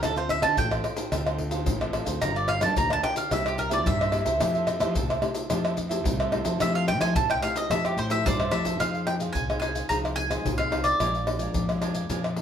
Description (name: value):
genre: samba and choro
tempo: 109 BPM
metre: 4/4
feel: straight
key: F major, F minor from 8.8 s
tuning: A4 = 440 Hz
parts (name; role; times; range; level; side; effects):
- mandolin; melody; 0.0-12.4 s; G4 to Bb5; -27 LUFS; right 1 dB; none
- cavaquinho; accompaniment; 0.0-12.4 s; D4 to Ab5; -35 LUFS; right 6 dB; none
- nylon-string guitar; accompaniment; 0.0-12.4 s; F2 to Bb4; -35 LUFS; left 3 dB; none
- fuzz fingered electric bass; bass; 0.0-12.4 s; G1 to F3; -30 LUFS; equal; overdrive
- maracas, surdo, pandeiro and tamborim; percussion; 0.0-12.4 s; none; -28 LUFS; left 1 dB; none
room: moderate studio reverb, RT60 0.7 s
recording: band playing live in one room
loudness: -23 LUFS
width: side -8 dB against mid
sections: 0.0-8.8 A section; 8.8-12.4 B section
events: mandolin solo 0.0-8.8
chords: 0.0 Dm7; 2.2 Gm7; 3.3 C7; 4.4 Fmaj9; 8.8 Fm7; 11.0 Bb7